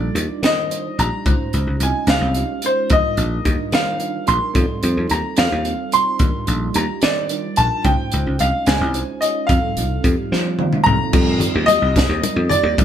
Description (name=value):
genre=electric jazz fusion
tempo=73 BPM (dotted quarters)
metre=6/8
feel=straight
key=unclear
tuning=A4 = 441 Hz
part: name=bright grand piano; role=melody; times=0.0-12.8 s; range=C5 to C6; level=-20 LUFS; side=equal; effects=none
part: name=bell-like tine electric piano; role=accompaniment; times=0.0-12.8 s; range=G3 to F5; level=-26 LUFS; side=right 5 dB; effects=phaser
part: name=dry thumbed slap bass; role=bass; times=0.0-12.8 s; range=Bb1 to F3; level=-20 LUFS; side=equal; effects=none
part: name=crisp fusion drum kit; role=drums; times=0.2-12.8 s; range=crash cymbal, hi-hat, kick drum, snare drum, toms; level=-20 LUFS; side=equal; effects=none
part: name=congas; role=percussion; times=11.1-12.8 s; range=none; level=-24 LUFS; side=left 4 dB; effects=none
room=moderate large studio reverb, RT60 0.8 s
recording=band playing live in one room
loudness=-16 LUFS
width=side -9 dB against mid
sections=0.0-11.1 A section; 11.1-12.8 B section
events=drum fill 10.3-11.1; tine electric piano fill 10.3-11.1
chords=0.0 Ebmaj9; 1.3 Dbmaj7; 2.9 Ebmaj9; 4.5 F9; 6.2 Ebmaj9; 7.8 Dbmaj7; 9.5 F9; 11.1 F7sus4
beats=0.44 | 1.26 2.08 | 2.90 3.73 | 4.55 5.37 | 6.20 7.02 | 7.84 8.67 | 9.49 10.32 | 11.14 11.96 | 12.79